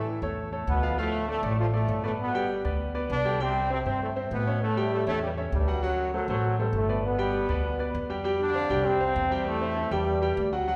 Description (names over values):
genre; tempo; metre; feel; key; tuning
latin; 198 BPM; 4/4; straight; C major; A4 = 439 Hz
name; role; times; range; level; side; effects
brilliant trombone section; melody; 0.0-10.5 s; F#2 to F4; -32 LUFS; equal; none
clear concert grand piano; accompaniment; 0.0-10.8 s; E3 to G5; -32 LUFS; equal; none
upright bass; bass; 0.0-10.8 s; G1 to A2; -33 LUFS; equal; none
room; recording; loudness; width
wet recital hall reverb, RT60 1.6 s; recorded in a church or concert hall; -27 LUFS; mono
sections
0.0-8.3 A section; 8.3-10.8 B section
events
none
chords
0.0 A; 1.0 Dm; 2.2 G; 3.4 C; 4.6 A7; 5.8 D7; 7.0 G7; 8.3 Fsus2; 9.5 C/E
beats
0.07 0.37 0.67 | 0.98 1.28 1.58 1.89 | 2.19 2.49 2.80 3.10 | 3.40 3.71 4.01 4.31 | 4.62 4.92 5.22 5.53 | 5.83 6.13 6.43 6.74 | 7.04 7.34 7.65 7.95 | 8.25 8.55 8.86 9.16 | 9.46 9.77 10.07 10.37 | 10.68